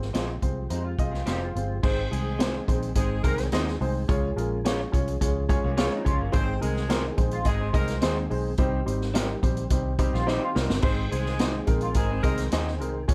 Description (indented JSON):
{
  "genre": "uptempo 1960s-style soul",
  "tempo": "107 BPM",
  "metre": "4/4",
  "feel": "straight",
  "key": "Ab major",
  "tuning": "A4 = 440 Hz",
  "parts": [
    { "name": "dark upright piano", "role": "accompaniment", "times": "0.0-13.1 s", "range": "G3 to Eb5", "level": "-32 LUFS", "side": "equal", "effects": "none" },
    { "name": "tonewheel organ", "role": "sustained chords", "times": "0.0-13.1 s", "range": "Eb3 to Ab4", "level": "-40 LUFS", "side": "equal", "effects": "none" },
    { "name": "vintage muted fingered electric bass", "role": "bass", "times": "0.0-13.1 s", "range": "F1 to F2", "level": "-32 LUFS", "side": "equal", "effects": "none" },
    { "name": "swinging big-band drum kit", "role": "drums", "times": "0.0-13.1 s", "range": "crash cymbal, hi-hat, kick drum, snare drum", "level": "-29 LUFS", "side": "equal", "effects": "none" },
    { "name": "electric guitar through a small old amp", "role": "stabs", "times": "0.1-12.7 s", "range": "C4 to Db5", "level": "-35 LUFS", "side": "equal", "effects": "none" },
    { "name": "electric guitar through a small old amp", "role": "riff", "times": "0.7-1.8, 5.6-12.9 s", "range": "Ab3 to Ab4", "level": "-37 LUFS", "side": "equal", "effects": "tube saturation, analog chorus" },
    { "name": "clear saxophone section", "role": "second line", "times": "1.8-12.5 s", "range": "Ab3 to C5", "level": "-36 LUFS", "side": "equal", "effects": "none" }
  ],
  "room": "light reverb",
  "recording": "dark, warm production",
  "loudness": "-26 LUFS",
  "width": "mono",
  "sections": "0.0-1.8 A section; 1.8-13.1 B section",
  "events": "drum fill 10.3-10.8",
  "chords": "0.0 Fm; 1.8 Ab; 4.1 Db; 6.3 Ab; 8.6 Cm; 10.8 Ab"
}